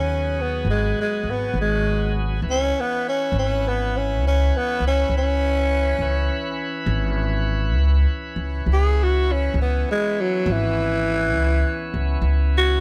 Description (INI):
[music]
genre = slow blues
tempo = 67 BPM (dotted quarters)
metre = 12/8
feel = straight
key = unclear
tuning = A4 = 440 Hz
[part]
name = growling tenor saxophone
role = melody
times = 0.0-12.8 s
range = E3 to G#4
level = -24 LUFS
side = equal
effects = none
[part]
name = bright tonewheel organ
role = sustained chords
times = 0.0-12.8 s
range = E3 to B4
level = -32 LUFS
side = equal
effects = overdrive, slow rotary speaker
[part]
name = upright bass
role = bass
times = 0.0-12.8 s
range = G#1 to D#2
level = -23 LUFS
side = equal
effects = none
[sound]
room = moderate stone room reverb, RT60 1.3 s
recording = band playing live in one room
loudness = -21 LUFS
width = mono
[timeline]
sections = 0.0-12.8 A section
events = tenor saxophone solo 0.0-12.8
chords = 0.0 G#m7; 2.4 C#m7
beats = 0.65 1.54 | 2.44 3.33 4.22 5.11 | 6.00 6.89 7.79 8.68 | 9.57 10.46 11.35 12.24